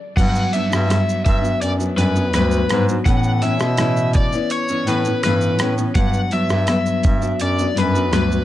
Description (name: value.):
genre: indie pop, bedroom pop.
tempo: 83 BPM.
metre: 4/4.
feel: straight.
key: unclear.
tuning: A4 = 439 Hz.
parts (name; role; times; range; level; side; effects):
overdriven slide guitar; melody; 0.2-8.4 s; B4 to F#5; -22 LUFS; left 2 dB; wide subtle chorus, analog delay.
nylon-string guitar; accompaniment; 0.2-8.4 s; G2 to D4; -20 LUFS; left 1 dB; wide subtle chorus, vibrato effect.
breathy bass clarinet; bass; 0.2-8.4 s; D2 to B2; -21 LUFS; right 1 dB; none.
dusty soul sampler-style drum kit; drums; 0.2-8.4 s; crash cymbal, hi-hat, kick drum, rim click, shaker; -21 LUFS; right 1 dB; none.
room: digital ambience.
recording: dark, warm production.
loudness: -16 LUFS.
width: side -14 dB against mid.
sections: 0.2-8.4 A section.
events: stop 0.0.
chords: 0.2 Gmaj7; 3.1 Aadd9; 6.0 Gmaj7.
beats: | 0.17 0.89 1.61 2.34 | 3.06 3.78 4.51 5.23 | 5.95 6.67 7.40 8.12.